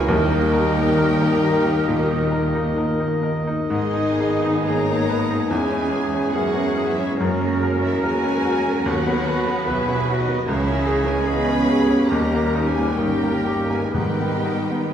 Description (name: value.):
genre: classical.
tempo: 59-77 BPM.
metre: 4/4.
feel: rubato.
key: unclear.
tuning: A4 = 439 Hz.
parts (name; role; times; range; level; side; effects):
bright baby grand piano; melody; 0.0-14.9 s; C#2 to B4; -22 LUFS; left 1 dB; none.
rich chamber violin section; melody; 0.0-14.9 s; C#5 to B5; -33 LUFS; left 3 dB; none.
bright clarinet; second line; 0.0-14.9 s; D#4 to A#4; -33 LUFS; right 1 dB; none.
bright oboe; second line; 0.0-14.8 s; A#4 to D#5; -34 LUFS; right 1 dB; none.
mellow silver concert flute; second line; 0.0-14.9 s; F#4 to D#5; -34 LUFS; left 1 dB; none.
warm chamber violin section; second line; 0.0-14.9 s; C#4 to B4; -32 LUFS; left 2 dB; none.
mellow bassoon; accompaniment; 0.0-14.9 s; C#3 to F#3; -30 LUFS; left 2 dB; none.
rich studio viola section; accompaniment; 0.0-14.9 s; E3 to D#4; -28 LUFS; right 2 dB; none.
clear trumpet section; stabs; 0.0-14.9 s; D#4 to B4; -31 LUFS; right 2 dB; none.
warm chamber cello section; bass; 0.0-14.9 s; E4 to B4; -31 LUFS; right 3 dB; none.
warm chamber double bass section; bass; 0.0-14.9 s; G1 to F#2; -27 LUFS; right 2 dB; none.
bright trombone section; sustained chords; 0.1-14.9 s; C#3 to C#4; -31 LUFS; right 3 dB; none.
dark French horn section; sustained chords; 0.1-14.9 s; C#3 to B3; -28 LUFS; left 2 dB; none.
timpani; percussion; 0.1-1.4, 13.9-14.9 s; G#2 to D#3; -30 LUFS; equal; none.
room: wet recital hall reverb, RT60 1.3 s.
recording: heard from further back in the room.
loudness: -18 LUFS.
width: side -9 dB against mid.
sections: 0.0-14.9 A section.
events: none.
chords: 0.1 D#; 3.7 G#m; 5.5 C#m/E; 7.2 F#; 8.9 B/D#; 10.5 C#m; 12.1 D#; 13.9 G#m.